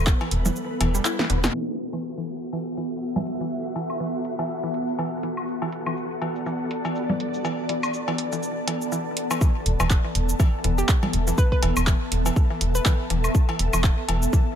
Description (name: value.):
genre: minimal techno.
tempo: 122 BPM.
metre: 4/4.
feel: swing 57% on 16ths.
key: unclear.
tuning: A4 = 441 Hz.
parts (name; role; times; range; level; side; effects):
rubbery square bass; bass; 0.0-1.5, 9.7-14.3 s; E1; -23 LUFS; equal; sidechain pumping.
ethereal airy pad; texture; 0.0-14.6 s; B3 to A5; -29 LUFS; equal; ensemble chorus, built-in reverb, tremolo, sidechain pumping.
flickering grainy texture; texture; 0.0-9.4 s; F#4 to B4; -37 LUFS; equal; built-in reverb, sidechain pumping.
electronic kick drum; drums; 0.1-0.2, 9.4-14.4 s; none; -20 LUFS; equal; none.
punchy analog drum machine; drums; 0.1-14.4 s; handclaps, hi-hat, shaker, snare drum; -28 LUFS; right 1 dB; none.
mallet-like synth pluck; riff; 0.2-14.4 s; B2 to E4; -32 LUFS; equal; chorus, vintage 12-bit sampler grit, sidechain pumping, ping-pong delay.
cowbell, congas and woodblock; percussion; 0.2-14.2 s; none; -31 LUFS; left 2 dB; overdrive, digital delay.
hollow square pluck; melody; 10.8-13.4 s; G4 to B4; -32 LUFS; equal; chorus, digital delay.
room: moderate lush hall reverb, RT60 2.0 s.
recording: low-pass filter.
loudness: -22 LUFS.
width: side -9 dB against mid.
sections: 0.0-1.5 A section; 1.5-9.4 B section; 9.4-14.6 C section.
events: filter sweep on synth arpeggio sound 0.0-1.5; kick drops out 0.6-1.5; drum fill 1.2-1.5; band accent 1.4; filter sweep 1.5-9.4; drop 9.4-14.6.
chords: 0.0 Esus4.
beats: 0.07 0.56 1.05 | 1.54 2.04 2.53 3.02 | 3.51 4.00 4.50 4.99 | 5.48 5.97 6.46 6.95 | 7.45 7.94 8.43 8.92 | 9.41 9.90 10.40 10.89 | 11.38 11.87 12.36 12.86 | 13.35 13.84 14.33.